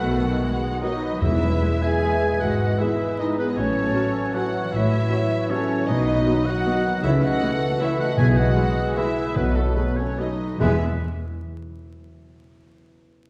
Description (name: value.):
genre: classical.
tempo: 137-168 BPM.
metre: 3/4.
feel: rubato.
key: E major.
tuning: A4 = 440 Hz.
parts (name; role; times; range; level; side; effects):
muted symphonic violin section; melody; 0.0-10.8 s; A4 to G#5; -34 LUFS; equal; none.
clear oboe; second line; 0.0-10.8 s; A4 to G#5; -35 LUFS; equal; none.
dark clarinet; second line; 0.0-10.8 s; F#4 to B4; -36 LUFS; equal; none.
flute section; second line; 0.0-10.8 s; F#4 to E5; -35 LUFS; equal; none.
muted symphonic violin section; second line; 0.0-10.8 s; A3 to G#4; -34 LUFS; equal; none.
dark bassoon; accompaniment; 0.0-10.8 s; D#3 to G#3; -34 LUFS; equal; none.
muted symphonic viola section; accompaniment; 0.0-10.8 s; E3 to C#4; -34 LUFS; equal; none.
clear trombone section; sustained chords; 0.0-10.8 s; D#3 to B3; -36 LUFS; equal; none.
dark French horn section; sustained chords; 0.0-10.8 s; A3 to G#4; -30 LUFS; equal; none.
concert harp; arpeggios; 0.0-11.9 s; E2 to A5; -33 LUFS; equal; none.
muted studio double bass section; bass; 0.0-10.8 s; E1 to C#2; -30 LUFS; equal; none.
muted symphonic cello section; bass; 0.0-10.8 s; E2 to C#3; -30 LUFS; equal; none.
timpani; percussion; 1.2-1.8, 8.2-10.8 s; E2 to B2; -29 LUFS; equal; none.
room: wet recital hall reverb, RT60 1.6 s.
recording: heard from further back in the room, vinyl crackle.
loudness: -22 LUFS.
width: mono.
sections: 0.0-10.6 A section; 10.6-11.8 B section.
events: slowing down 7.6-10.6.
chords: 0.0 B; 1.2 E; 2.4 E/G#; 3.6 F#m7/A; 5.9 B; 7.0 A/C#; 8.2 E/B; 9.4 B7; 10.6 E.